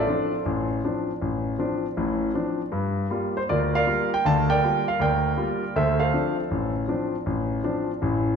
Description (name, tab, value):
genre	solo jazz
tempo	159 BPM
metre	4/4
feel	swing 66% on 8ths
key	D minor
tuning	A4 = 441 Hz
part	warm concert grand piano	solo	0.0-8.3 s	A1 to A5	-22 LUFS	equal	none
room	wet recital hall reverb, RT60 1.5 s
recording	recorded in a church or concert hall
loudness	-22 LUFS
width	side -6 dB against mid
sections	0.0-8.4 A section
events	none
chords	0.0 Dm7; 2.7 Gm7; 5.7 Dm7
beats	0.07 0.45 0.83 | 1.20 1.58 1.96 2.34 | 2.72 3.10 3.47 3.85 | 4.23 4.61 4.99 5.37 | 5.74 6.12 6.50 6.88 | 7.26 7.64 8.02